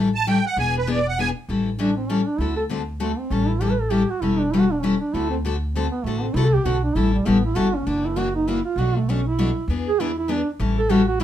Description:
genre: acoustic string swing (jazz manouche)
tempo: 197 BPM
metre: 3/4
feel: swing 60% on 8ths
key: A mixolydian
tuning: A4 = 440 Hz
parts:
  - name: picked steel-string acoustic guitar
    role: accompaniment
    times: 0.0-11.2 s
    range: B2 to A4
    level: -22 LUFS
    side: left 4 dB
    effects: none
  - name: upright bass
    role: bass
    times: 0.0-11.2 s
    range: E1 to E2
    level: -25 LUFS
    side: equal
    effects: none
  - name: musette accordion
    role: melody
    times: 0.1-1.3 s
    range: B4 to A5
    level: -22 LUFS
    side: right 3 dB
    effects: none
  - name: mellow duduk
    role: second line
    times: 1.8-11.2 s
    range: G3 to B4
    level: -24 LUFS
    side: right 4 dB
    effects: none
room: moderate club reverb, RT60 0.5 s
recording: minimal, uncompressed stereo recording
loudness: -19 LUFS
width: side -11 dB against mid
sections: 0.0-1.5 A section; 1.5-11.2 A section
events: accordion solo 0.0-1.5; duduk solo 1.5-11.2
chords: 0.0 A7; 0.6 E7; 1.5 A7; 2.4 D7; 3.3 A7; 5.1 D7; 7.0 A7; 7.9 F#aug7; 8.8 Bm7; 9.7 E7; 10.6 A7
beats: 0.27 | 0.57 0.88 1.18 | 1.48 1.79 2.09 | 2.39 2.70 3.00 | 3.31 3.61 3.91 | 4.22 4.52 4.83 | 5.13 5.43 5.74 | 6.04 6.35 6.65 | 6.96 7.26 7.56 | 7.87 8.17 8.47 | 8.78 9.08 9.39 | 9.69 9.99 10.30 | 10.60 10.90 11.21

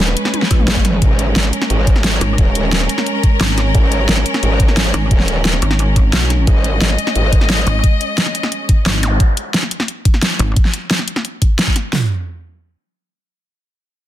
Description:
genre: dark technical drum and bass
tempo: 176 BPM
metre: 4/4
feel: straight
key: G# minor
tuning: A4 = 440 Hz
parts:
  - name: bright symphonic string section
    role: sustained chords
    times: 0.0-9.2 s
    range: G#3 to D#5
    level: -20 LUFS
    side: equal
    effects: sidechain pumping
  - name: growl bass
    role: bass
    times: 0.0-7.7 s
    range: D#1 to G#1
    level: -17 LUFS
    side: equal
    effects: chorus, tube saturation, sidechain pumping
  - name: dubstep drum kit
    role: drums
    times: 0.0-11.8 s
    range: hi-hat, snare drum, toms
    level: -18 LUFS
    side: equal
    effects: overdrive
  - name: pulsing pluck wobble bass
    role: bass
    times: 0.5-10.6 s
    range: G#1 to B1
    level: -15 LUFS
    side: equal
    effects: chorus
  - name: dubstep drum kit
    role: drums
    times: 0.5-12.0 s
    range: kick drum, snare drum, toms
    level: -13 LUFS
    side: equal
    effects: overdrive
  - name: zap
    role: sound effects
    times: 9.0-9.1 s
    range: none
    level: -24 LUFS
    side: equal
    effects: none
room: light reverb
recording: dense, heavily limited modern master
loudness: -12 LUFS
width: side -13 dB against mid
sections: 0.0-11.9 A section; 11.9-14.1 B section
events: drop 0.0-11.9; drum fill 0.3-1.0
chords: 0.0 G#5; 11.9 N.C.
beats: 0.00 0.34 0.68 | 1.02 1.36 1.70 2.04 | 2.38 2.72 3.06 3.41 | 3.75 4.09 4.43 4.77 | 5.11 5.45 5.79 6.13 | 6.47 6.82 7.16 7.50 | 7.84 8.18 8.52 8.86 | 9.20 9.54 9.88 10.22 | 10.56 10.91 11.25 11.59 | 11.93

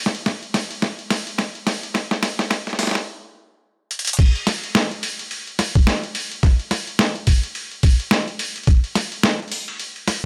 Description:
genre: glitch hop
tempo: 107 BPM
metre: 4/4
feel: swing 59% on 16ths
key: none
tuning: none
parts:
  - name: boom bap sampler-style drum kit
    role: drums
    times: 0.1-10.2 s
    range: crash cymbal, hi-hat, snare drum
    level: -24 LUFS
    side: equal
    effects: overdrive
  - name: electronic kick drum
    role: drums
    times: 0.3-8.8 s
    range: none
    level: -17 LUFS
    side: equal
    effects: overdrive, high-pass filter on kick
room: little or no reverb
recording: high-pass filter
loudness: -21 LUFS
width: mono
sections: 0.0-4.2 A section; 4.2-10.3 B section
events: build-up 0.0-4.2; drum fill 0.0-3.1, 3.9; filter sweep 0.0-4.2; stop 3.1-4.2; drop 4.2-10.3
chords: none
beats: 0.26 0.82 1.38 | 1.95 2.50 3.07 3.63 | 4.19 4.75 5.31 5.87 | 6.43 6.99 7.55 8.11 | 8.67 9.23 9.79

